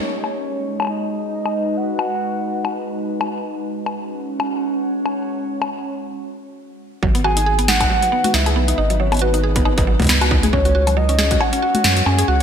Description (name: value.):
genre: IDM.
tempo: 137 BPM.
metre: 4/4.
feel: swing 56% on 16ths.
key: G# minor.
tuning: A4 = 440 Hz.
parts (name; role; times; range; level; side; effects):
warbly nostalgic lead; melody; 0.0-3.3, 7.2-12.4 s; B4 to G#5; -22 LUFS; equal; chorus, ping-pong delay.
warbly tape-like pad; sustained chords; 0.0-12.4 s; D#3 to F#5; -25 LUFS; right 1 dB; chorus, built-in reverb.
booming analog drum machine; drums; 0.2-12.4 s; bongos, hi-hat, snare drum, toms; -22 LUFS; left 3 dB; low-pass filter on hats, low-pass filter on perc, low-pass filter on snare, low-pass filter on toms, gated reverb, ping-pong delay.
mallet-like synth pluck; arpeggios; 7.0-12.4 s; F#3 to C#5; -24 LUFS; right 4 dB; chorus, ping-pong delay.
round analog bass; bass; 7.0-12.4 s; G#1 to F#2; -18 LUFS; equal; none.
electronic kick drum; drums; 7.0-11.4 s; none; -20 LUFS; equal; distortion.
room: moderate lush hall reverb, RT60 1.9 s.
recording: bright 1980s-style digital production.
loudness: -16 LUFS.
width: side -8 dB against mid.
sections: 0.0-7.0 A section; 7.0-12.4 B section.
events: break 6.2-7.0.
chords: 0.0 G#m7; 10.5 C#sus4.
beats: | 0.02 0.46 0.90 1.33 | 1.77 2.21 2.65 3.08 | 3.52 3.96 4.40 4.84 | 5.28 5.71 6.15 6.59 | 7.03 7.46 7.90 8.34 | 8.78 9.22 9.65 10.09 | 10.53 10.97 11.41 11.84 | 12.28.